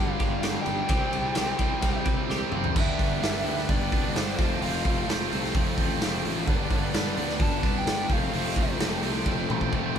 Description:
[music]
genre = quiet-loud alternative rock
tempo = 129 BPM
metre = 4/4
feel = straight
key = G mixolydian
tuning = A4 = 440 Hz
[part]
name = dark smooth lead guitar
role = melody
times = 0.0-8.8 s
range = C5 to A5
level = -33 LUFS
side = equal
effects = overdrive
[part]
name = twelve-string electric guitar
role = arpeggios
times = 0.0-2.8 s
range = C3 to G4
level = -36 LUFS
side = right 2 dB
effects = tremolo
[part]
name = distorted electric guitar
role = riff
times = 0.0-10.0 s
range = F2 to D4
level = -31 LUFS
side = right 8 dB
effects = overdrive
[part]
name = overdriven electric guitar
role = riff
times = 0.0-10.0 s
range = F2 to G4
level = -31 LUFS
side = left 9 dB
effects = none
[part]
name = fuzz fingered electric bass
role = bass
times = 0.0-10.0 s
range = F1 to D2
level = -33 LUFS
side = equal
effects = overdrive
[part]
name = raw garage drum kit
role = drums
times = 0.2-10.0 s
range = crash cymbal, hi-hat, kick drum, ride cymbal, snare drum, toms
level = -27 LUFS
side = equal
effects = none
[part]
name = ensemble organ-string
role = sustained chords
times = 2.8-10.0 s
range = D4 to A5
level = -42 LUFS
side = equal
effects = none
[sound]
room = light reverb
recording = band playing live in one room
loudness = -24 LUFS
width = side -8 dB against mid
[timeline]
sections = 0.0-2.8 A section; 2.8-10.0 B section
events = drum fill 2.3-2.8, 9.3-10.0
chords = 0.0 G; 0.9 Cadd9; 2.8 G; 4.4 F; 6.5 G; 8.1 F

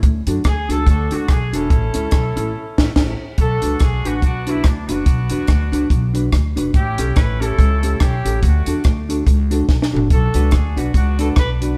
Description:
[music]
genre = ska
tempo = 143 BPM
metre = 4/4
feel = swing 58% on 8ths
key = unclear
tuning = A4 = 440 Hz
[part]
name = upright bass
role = bass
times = 0.0-11.7 s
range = E1 to F#2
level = -22 LUFS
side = equal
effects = none
[part]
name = compact cocktail drum kit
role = drums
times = 0.0-11.7 s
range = crash cymbal, hi-hat, kick drum, rim click, snare drum, toms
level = -19 LUFS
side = equal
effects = none
[part]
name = hollow-body jazz guitar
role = accompaniment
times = 0.3-11.8 s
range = C#4 to B4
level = -26 LUFS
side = equal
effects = none
[part]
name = clear horn section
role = melody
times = 0.5-11.8 s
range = A3 to B4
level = -27 LUFS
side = equal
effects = none
[sound]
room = moderate stone room reverb, RT60 1.3 s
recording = band playing live in one room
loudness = -17 LUFS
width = mono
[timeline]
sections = 0.0-3.4 A section; 3.4-11.8 B section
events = band accent 2.5-3.4; drum fill 9.7-10.1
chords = 0.0 D; 1.7 A; 3.4 Bm; 6.7 A7; 8.4 D; 10.1 Bm

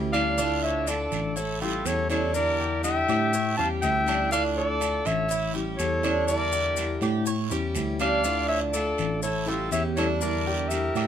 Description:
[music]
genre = latin, Cuban son and guajira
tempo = 122 BPM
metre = 4/4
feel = straight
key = D harmonic minor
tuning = A4 = 435 Hz
[part]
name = picked steel-string acoustic guitar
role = accompaniment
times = 0.0-11.1 s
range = D3 to F4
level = -32 LUFS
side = left 2 dB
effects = none
[part]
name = Cuban tres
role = arpeggios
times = 0.0-11.1 s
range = D4 to C#5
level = -31 LUFS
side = right 5 dB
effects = none
[part]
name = tine electric piano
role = bass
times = 0.0-11.1 s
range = A1 to A2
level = -29 LUFS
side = equal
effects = medium stereo tremolo
[part]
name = warm clarinet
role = melody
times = 0.1-11.1 s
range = A4 to A5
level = -28 LUFS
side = equal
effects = none
[part]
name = clear trumpet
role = second line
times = 0.1-11.1 s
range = F4 to F5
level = -32 LUFS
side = left 3 dB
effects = none
[part]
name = guiro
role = percussion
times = 0.1-11.1 s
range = none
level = -38 LUFS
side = right 6 dB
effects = none
[part]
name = maracas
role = percussion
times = 0.1-11.1 s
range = none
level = -37 LUFS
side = left 8 dB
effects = none
[sound]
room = light reverb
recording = minimal, uncompressed stereo recording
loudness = -23 LUFS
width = side -9 dB against mid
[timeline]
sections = 0.0-11.1 A section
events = none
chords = 0.4 Dm; 1.4 A7; 2.4 Em7b5; 3.3 A7; 4.3 Dm; 5.3 A7; 6.3 Em7b5; 7.3 A7; 8.2 Dm; 9.2 A7; 10.2 Em7b5

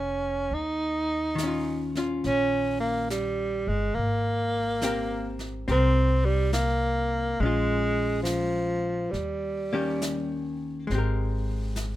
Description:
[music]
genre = jazz ballad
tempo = 69 BPM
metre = 4/4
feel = swing 66% on 8ths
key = Ab major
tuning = A4 = 440 Hz
[part]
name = warm tenor saxophone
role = melody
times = 0.0-10.6 s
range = F3 to Eb4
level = -26 LUFS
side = right 1 dB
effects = none
[part]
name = archtop guitar, miked and amplified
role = accompaniment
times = 0.0-12.0 s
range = Eb3 to Bb4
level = -31 LUFS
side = left 2 dB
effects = none
[part]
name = upright bass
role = bass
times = 0.0-12.0 s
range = F1 to Eb2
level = -29 LUFS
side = equal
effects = none
[part]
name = jazz brush drum kit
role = drums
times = 0.5-12.0 s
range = brushed snare drum, hi-hat, snare drum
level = -39 LUFS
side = right 1 dB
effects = none
[sound]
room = light reverb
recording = minimal, uncompressed stereo recording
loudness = -24 LUFS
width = side -14 dB against mid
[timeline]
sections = 0.0-10.9 A section; 10.9-12.0 B section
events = none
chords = 0.0 Bbm9; 0.5 Eb7sus2; 4.0 Abmaj9; 7.4 Bbm7; 9.1 Eb7; 10.9 Abmaj9

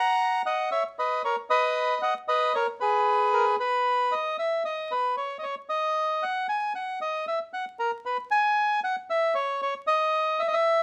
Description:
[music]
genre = tango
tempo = 114 BPM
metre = 4/4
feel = rubato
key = B major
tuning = A4 = 442 Hz
[part]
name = bandoneon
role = solo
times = 0.0-10.8 s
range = G#4 to A#5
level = -26 LUFS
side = equal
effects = none
[sound]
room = moderate studio reverb, RT60 0.5 s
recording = vinyl crackle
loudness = -26 LUFS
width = mono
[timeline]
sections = 0.0-3.9 A section; 3.9-10.8 A section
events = none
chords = 0.0 F#; 1.8 B6; 3.9 N.C.

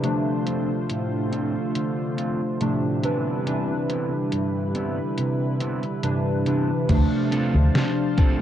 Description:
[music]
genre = vaporwave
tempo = 70 BPM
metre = 4/4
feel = straight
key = unclear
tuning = A4 = 440 Hz
[part]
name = warbly lo-fi synth keys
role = accompaniment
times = 0.0-8.4 s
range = C3 to B4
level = -24 LUFS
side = equal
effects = wide subtle chorus, vintage 12-bit sampler grit, tape echo
[part]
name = lush unison pad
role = sustained chords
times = 0.0-8.4 s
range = D3 to A5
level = -30 LUFS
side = equal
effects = chorus
[part]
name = electric guitar at the edge of break-up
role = riff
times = 0.0-8.4 s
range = G2 to A4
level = -29 LUFS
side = right 2 dB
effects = wide subtle chorus, low-pass filter, tape echo
[part]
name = detuned 8-bit digital drum machine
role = drums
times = 0.0-8.4 s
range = crash cymbal, hi-hat, snare drum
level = -28 LUFS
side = equal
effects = vintage 12-bit sampler grit
[part]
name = fretless electric bass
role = bass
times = 6.9-7.7 s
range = D2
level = -19 LUFS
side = equal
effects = wide subtle chorus
[part]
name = electronic kick drum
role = drums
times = 6.9-8.4 s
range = none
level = -19 LUFS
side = equal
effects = vintage 12-bit sampler grit
[sound]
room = light reverb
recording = dark, warm production, cassette tape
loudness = -21 LUFS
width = side -10 dB against mid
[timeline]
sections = 0.0-6.9 A section; 6.9-8.4 B section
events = none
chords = 0.0 Dm7; 3.0 Cmaj9; 6.9 Dm7

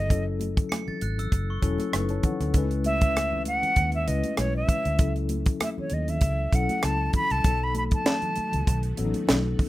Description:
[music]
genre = lush 1970s-style soul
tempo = 98 BPM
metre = 4/4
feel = swing 54% on 16ths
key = F# dorian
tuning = A4 = 439 Hz
[part]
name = breathy bright concert flute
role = melody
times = 0.0-8.8 s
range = C#5 to B5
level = -27 LUFS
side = equal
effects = plate reverb
[part]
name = tine electric piano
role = accompaniment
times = 0.0-9.7 s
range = F#3 to C#6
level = -31 LUFS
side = left 5 dB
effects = medium tremolo, plate reverb
[part]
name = vintage muted fingered electric bass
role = bass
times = 0.0-9.5 s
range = E1 to D#2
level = -28 LUFS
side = equal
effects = none
[part]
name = tight funk drum kit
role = drums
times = 0.1-9.7 s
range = hi-hat, kick drum, rim click, snare drum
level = -25 LUFS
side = equal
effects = none
[part]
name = congas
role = percussion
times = 0.1-9.7 s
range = none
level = -38 LUFS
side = right 3 dB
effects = none
[part]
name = glockenspiel with hard plastic mallets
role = texture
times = 0.7-2.4 s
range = C#6 to C#7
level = -42 LUFS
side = right 2 dB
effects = none
[part]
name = string machine, full ensemble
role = sustained chords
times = 7.4-9.7 s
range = D#3 to F#4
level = -40 LUFS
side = right 1 dB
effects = ensemble chorus
[sound]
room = light reverb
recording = rough home demo mix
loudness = -23 LUFS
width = side -16 dB against mid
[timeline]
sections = 0.0-9.7 A section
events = flute solo 0.0-9.7; tine electric piano fill 1.6-2.5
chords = 0.1 F#m7; 2.5 C#m7; 5.0 F#m7/C#; 7.4 B7

